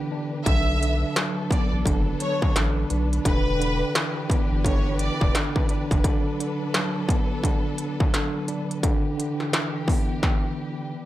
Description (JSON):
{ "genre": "hip hop, boom-bap hip-hop", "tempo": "86 BPM", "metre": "4/4", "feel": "swing 62% on 16ths", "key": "E minor", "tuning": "A4 = 440 Hz", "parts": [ { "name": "mellow tine electric piano", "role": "accompaniment", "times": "0.0-11.1 s", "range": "D3 to D4", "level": "-28 LUFS", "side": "right 1 dB", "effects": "overdrive, medium stereo tremolo, cassette tape" }, { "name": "dark studio string section", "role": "sustained chords", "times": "0.0-11.1 s", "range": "E3 to B4", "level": "-34 LUFS", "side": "equal", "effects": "none" }, { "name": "clear studio violin section", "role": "melody", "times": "0.5-5.3 s", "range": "B4 to E5", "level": "-30 LUFS", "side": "left 1 dB", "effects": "tape echo" }, { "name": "saturated sub bass", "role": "bass", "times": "0.5-6.0 s", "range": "E1 to B1", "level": "-25 LUFS", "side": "equal", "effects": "none" }, { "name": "industrial drum kit", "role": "drums", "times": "0.5-10.4 s", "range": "hi-hat, kick drum, snare drum", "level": "-23 LUFS", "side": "equal", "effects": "distortion" } ], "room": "digital ambience", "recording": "none", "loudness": "-21 LUFS", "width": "side -14 dB against mid", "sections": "0.0-11.1 A section", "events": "break 0.0-0.5", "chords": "0.5 Bm7; 3.3 Em7; 6.0 Bm7; 8.8 Em7", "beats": "| 0.46 1.16 1.86 2.56 | 3.25 3.95 4.65 5.35 | 6.04 6.74 7.44 8.14 | 8.83 9.53 10.23 10.93" }